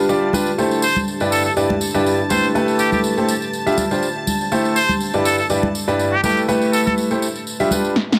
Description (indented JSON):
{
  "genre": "piano house",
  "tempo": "122 BPM",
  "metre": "4/4",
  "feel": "swing 54% on 16ths",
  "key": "A minor",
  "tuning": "A4 = 440 Hz",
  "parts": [
    { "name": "warm symphonic string section", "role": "sustained chords", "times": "0.0-8.0 s", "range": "A5 to A6", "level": "-31 LUFS", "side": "equal", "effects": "none" },
    { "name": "bright grand piano", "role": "riff", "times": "0.0-7.9 s", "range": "G2 to E5", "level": "-21 LUFS", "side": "equal", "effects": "digital delay" },
    { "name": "deep dark ambient pad", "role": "texture", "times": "0.0-8.0 s", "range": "G3 to C5", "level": "-30 LUFS", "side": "equal", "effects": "chorus, built-in reverb" },
    { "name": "tambourine and congas", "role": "percussion", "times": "0.1-7.9 s", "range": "none", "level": "-27 LUFS", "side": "equal", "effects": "none" },
    { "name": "trumpet with straight mute", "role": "melody", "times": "0.8-6.9 s", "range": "G4 to C5", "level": "-23 LUFS", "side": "equal", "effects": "digital delay" },
    { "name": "electronic snare drum", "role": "drums", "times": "8.0-8.2 s", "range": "none", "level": "-17 LUFS", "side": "equal", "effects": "none" }
  ],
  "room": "light reverb, small room ambience",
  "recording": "none",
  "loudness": "-18 LUFS",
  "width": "mono",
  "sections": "0.0-8.2 A section",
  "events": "drum fill 8.0",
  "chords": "0.0 G7sus4; 0.6 Am7; 1.3 Em7/G; 2.3 A7(no3); 3.5 G7sus4; 4.5 Am7; 5.3 Em7/G; 6.2 A7(no3); 7.5 G7sus4"
}